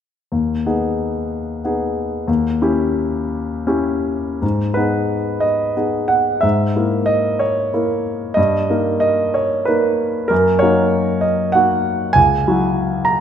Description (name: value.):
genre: classical, romantic character piece for solo piano.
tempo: 51-67 BPM (dotted quarters).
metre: 6/8.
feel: rubato.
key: G# minor.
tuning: A4 = 440 Hz.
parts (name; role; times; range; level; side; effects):
warm concert grand piano; solo; 0.3-13.2 s; C#2 to A#5; -15 LUFS; equal; none.
room: moderate recital hall reverb, RT60 1.5 s.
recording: none.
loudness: -15 LUFS.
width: side -8 dB against mid.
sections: 0.3-4.4 A section; 4.4-13.2 B section.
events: none.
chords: 0.3 G#m/D#; 2.3 D#7b9; 4.4 G#m; 6.4 A#m7b5/G#; 8.4 D#/G; 10.3 D#m/F#; 12.2 F#7/C#.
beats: | 0.31 1.32 | 2.28 3.30 | 4.43 5.44 | 6.44 7.42 | 8.38 9.36 | 10.31 11.24 | 12.17 13.07.